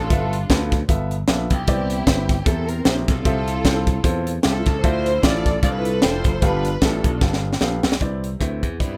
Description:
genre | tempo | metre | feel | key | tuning
uptempo gospel | 152 BPM | 4/4 | swing 57% on 8ths | C major | A4 = 441 Hz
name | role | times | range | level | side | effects
rich studio string section | melody | 0.0-9.0 s | G3 to D5 | -28 LUFS | equal | none
slap bass | bass | 0.0-9.0 s | F1 to G2 | -26 LUFS | equal | none
clear upright piano | accompaniment | 0.1-9.0 s | G2 to G5 | -30 LUFS | equal | none
crisp fusion drum kit | drums | 0.1-8.9 s | hi-hat, kick drum, rim click, snare drum | -22 LUFS | equal | none
room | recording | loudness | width
little or no reverb | rough home demo mix | -20 LUFS | mono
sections
0.0-8.0 A section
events
drum fill 7.2-8.0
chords
0.1 G13; 1.7 Cmaj9; 2.5 C7/E; 3.3 Fmaj7/C; 4.8 Dm9; 6.4 G9; 8.0 Cmaj9

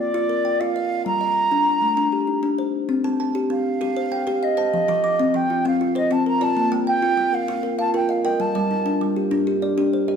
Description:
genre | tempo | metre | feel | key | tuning
southern african traditional, mbira-style interlocking cycle | 131 BPM (dotted quarters) | 12/8 | straight | C dorian | A4 = 439 Hz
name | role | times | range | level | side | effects
baroque flute | melody | 0.0-9.0 s | D5 to Bb5 | -22 LUFS | right 2 dB | none
kalimba | arpeggios | 0.1-10.2 s | F3 to D6 | -22 LUFS | left 2 dB | none
kalimba | arpeggios | 3.0-10.2 s | F3 to D6 | -26 LUFS | right 4 dB | none
room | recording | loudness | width
wet recital hall reverb, RT60 1.6 s | recorded in a church or concert hall | -19 LUFS | side -7 dB against mid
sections
0.0-2.9 A section; 2.9-10.2 A section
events
none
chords
0.0 Bb; 1.1 Gm; 2.9 C5; 4.7 F5; 6.6 Bb5; 8.4 G5

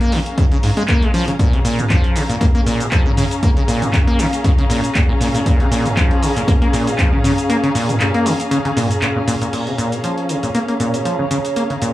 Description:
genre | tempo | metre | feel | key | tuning
acid house | 118 BPM | 4/4 | swing 55% on 16ths | Bb minor | A4 = 441 Hz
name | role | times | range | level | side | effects
acid bass, saw | riff | 0.0-11.9 s | Ab2 to Bb3 | -19 LUFS | equal | tube saturation, sidechain pumping, tape echo
punchy analog drum machine | drums | 0.0-11.9 s | cabasa, crash cymbal, handclaps, hi-hat, toms | -24 LUFS | right 1 dB | none
dark chamber string section | texture | 0.0-11.9 s | Db4 to Bb5 | -22 LUFS | left 1 dB | sidechain pumping
electronic kick drum | drums | 0.4-7.1 s | none | -16 LUFS | equal | none
warbly tape-like pad | sustained chords | 10.0-11.9 s | Db5 | -26 LUFS | right 8 dB | chorus, built-in reverb, sidechain pumping
room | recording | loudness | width
light reverb | dry, gritty hardware recording, small room ambience | -14 LUFS | side -15 dB against mid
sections
0.0-9.5 A section; 9.5-11.9 B section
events
kick drops out 7.5-9.5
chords
0.0 Bbm7

